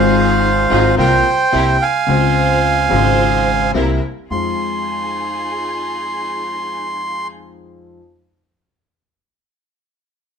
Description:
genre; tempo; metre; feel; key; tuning
tango; 109 BPM; 4/4; rubato; F minor; A4 = 440 Hz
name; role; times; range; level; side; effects
bandoneon; melody; 0.0-7.3 s; C5 to C6; -16 LUFS; right 4 dB; none
warm upright piano; accompaniment; 0.0-8.0 s; Ab1 to F4; -19 LUFS; left 4 dB; none
rich studio string section; stabs; 0.0-7.3 s; C4 to C5; -24 LUFS; equal; none
upright bass; bass; 0.0-4.5 s; Ab1 to F2; -21 LUFS; right 1 dB; none
room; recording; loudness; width
moderate studio reverb, RT60 0.9 s; minimal, uncompressed stereo recording; -14 LUFS; side -6 dB against mid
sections
0.0-4.3 A section; 4.3-6.5 B section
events
none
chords
0.0 Fm7/Ab; 1.0 C7sus4; 1.5 C7; 2.1 Dbmaj7; 3.7 C7; 4.3 Fm7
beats
0.43 0.98 1.53 | 2.08 2.64 3.19 3.75 | 4.30 4.85 5.41 5.96

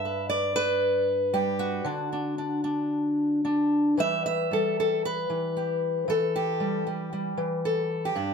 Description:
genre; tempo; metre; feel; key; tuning
folk, solo fingerstyle acoustic guitar; 115 BPM; 4/4; rubato; unclear; A4 = 440 Hz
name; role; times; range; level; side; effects
fingerpicked steel-string acoustic guitar; solo; 0.0-8.3 s; G2 to E5; -24 LUFS; equal; none
room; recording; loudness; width
wet studio reverb, RT60 0.8 s; none; -24 LUFS; side -6 dB against mid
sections
0.0-4.0 A section; 4.0-8.3 B section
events
none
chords
0.0 Em/G; 1.9 N.C.; 4.0 Em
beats
0.30 0.81 1.33 | 1.85 2.37 2.90 3.44 | 3.98 4.51 5.04 5.56 | 6.08 6.60 7.12 7.64 | 8.15

